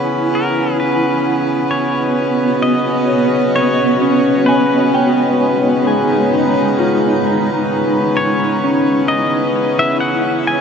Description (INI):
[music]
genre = ambient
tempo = 65 BPM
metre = 4/4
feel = straight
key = unclear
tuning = A4 = 441 Hz
[part]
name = granular cloud pad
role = sustained chords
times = 0.0-10.6 s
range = Ab3 to Bb5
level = -17 LUFS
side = right 1 dB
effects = built-in reverb
[part]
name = pedal harmonium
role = drone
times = 0.0-10.6 s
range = Db3 to Cb4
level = -17 LUFS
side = equal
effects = stereo widening
[part]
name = pedal steel guitar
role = melody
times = 0.3-10.6 s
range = Bb4 to Ab5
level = -21 LUFS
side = left 2 dB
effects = ping-pong delay
[part]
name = soft synth bell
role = arpeggios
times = 4.0-10.6 s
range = Db4 to Ab5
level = -19 LUFS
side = left 2 dB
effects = chorus, ping-pong delay
[sound]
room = wet huge ambient reverb, RT60 7.2 s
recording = in a vast, echoing space, nothing above 7.9 kHz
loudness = -12 LUFS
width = side -6 dB against mid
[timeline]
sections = 0.0-10.6 A section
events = fade-in on ambient pad 0.0-10.6; fade-in on synth bell 0.0-10.6; fade-in on pedal steel guitar 0.0-10.6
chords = 0.0 E; 0.8 Cb; 4.5 Abm; 8.2 Dbm9